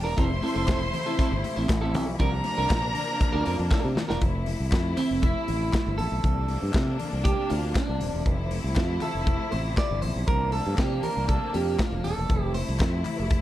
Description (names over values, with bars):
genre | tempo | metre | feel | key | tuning
disco | 119 BPM | 4/4 | straight | F major | A4 = 442 Hz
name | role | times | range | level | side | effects
rich studio violin section | second line | 0.0-3.9 s | A4 to C6 | -31 LUFS | right 1 dB | none
electric guitar at the edge of break-up | accompaniment | 0.0-13.3 s | C4 to D5 | -30 LUFS | right 3 dB | none
clear studio string section | sustained chords | 0.0-13.4 s | C3 to E4 | -33 LUFS | left 2 dB | none
fingered electric bass | bass | 0.0-13.4 s | Eb1 to C3 | -28 LUFS | equal | none
modern studio drum kit | drums | 0.2-13.4 s | hi-hat, kick drum, snare drum | -27 LUFS | equal | none
congas | percussion | 0.2-13.4 s | none | -38 LUFS | left 4 dB | none
group handclap | percussion | 0.7-13.2 s | none | -42 LUFS | left 4 dB | none
room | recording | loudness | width
small room ambience | dark, warm production | -23 LUFS | side -14 dB against mid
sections
0.0-4.2 A section; 4.2-13.4 B section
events
drum fill 3.7-4.2; clean electric guitar solo 4.2-13.4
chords
0.2 Fmaj7; 2.2 C9sus4; 4.2 Fmaj7; 6.2 C9sus4; 8.3 Fmaj7; 10.3 C9sus4; 12.3 Fmaj7